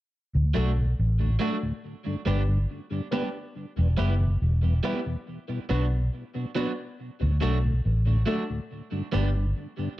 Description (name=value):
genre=reggae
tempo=70 BPM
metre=4/4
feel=straight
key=D major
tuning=A4 = 440 Hz
part: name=mellow tonewheel organ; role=accompaniment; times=0.3-9.9 s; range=D2 to E4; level=-32 LUFS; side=left 1 dB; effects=chorus vibrato, slow rotary speaker, tape echo
part: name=vintage muted fingered electric bass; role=bass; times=0.4-9.5 s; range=E1 to D2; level=-23 LUFS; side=equal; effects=none
part: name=electric guitar at the edge of break-up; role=accompaniment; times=0.5-9.3 s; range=F#3 to G4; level=-33 LUFS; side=right 6 dB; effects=wide subtle chorus, tape echo
part: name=warm upright piano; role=stabs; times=0.5-9.3 s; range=A3 to B4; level=-34 LUFS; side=left 5 dB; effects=none
room=light reverb, digital ambience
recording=echo-heavy mix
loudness=-24 LUFS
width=side -16 dB against mid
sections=0.1-10.0 A section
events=none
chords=0.1 D; 1.8 G; 3.6 Em; 5.3 Bm; 7.0 D; 8.7 G